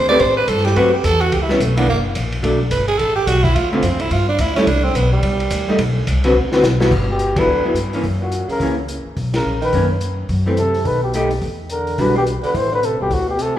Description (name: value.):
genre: jazz, small-group swing and bop.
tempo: 214 BPM.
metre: 4/4.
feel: swing 61% on 8ths.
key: G major from 6.9 s.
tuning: A4 = 440 Hz.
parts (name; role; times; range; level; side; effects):
growling tenor saxophone; second line; 0.0-13.6 s; A2 to D5; -20 LUFS; right 3 dB; none.
upright bass; bass; 0.0-13.6 s; F#1 to A2; -20 LUFS; left 1 dB; none.
vintage hollow-body jazz guitar; accompaniment; 0.1-13.6 s; D3 to B4; -20 LUFS; left 1 dB; none.
vintage drum kit; drums; 0.1-13.5 s; crash cymbal, hi-hat, kick drum, ride cymbal, snare drum; -25 LUFS; equal; none.
trumpet with bucket mute; melody; 7.1-13.6 s; F#4 to C5; -20 LUFS; left 1 dB; none.
room: wet recital hall reverb, RT60 1.7 s.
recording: recorded in a church or concert hall.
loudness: -15 LUFS.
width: side -12 dB against mid.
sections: 0.0-6.9 A section; 6.9-13.6 B section.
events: tenor saxophone solo 0.0-6.9; drum fill 6.3-6.9; band accent 7.3, 9.3.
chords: 0.2 Am9; 1.3 C#m7b5; 1.9 F#; 2.4 Bm7; 3.6 Dm7; 4.1 Gsus2; 4.7 C5; 5.8 B5; 6.3 D13; 6.9 G6; 8.0 F#7; 9.2 Bmaj9; 10.3 F#m7b5; 10.9 B7b13; 11.4 Em9; 12.5 Am.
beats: | 0.20 0.48 0.76 1.04 | 1.31 1.59 1.87 2.15 | 2.43 2.71 2.99 3.27 | 3.55 3.83 4.11 4.39 | 4.67 4.95 5.23 5.51 | 5.79 6.07 6.35 6.63 | 6.91 7.19 7.47 7.76 | 8.04 8.32 8.60 8.88 | 9.17 9.45 9.73 10.01 | 10.29 10.58 10.86 11.14 | 11.42 11.70 11.98 12.27 | 12.55 12.83 13.11 13.39.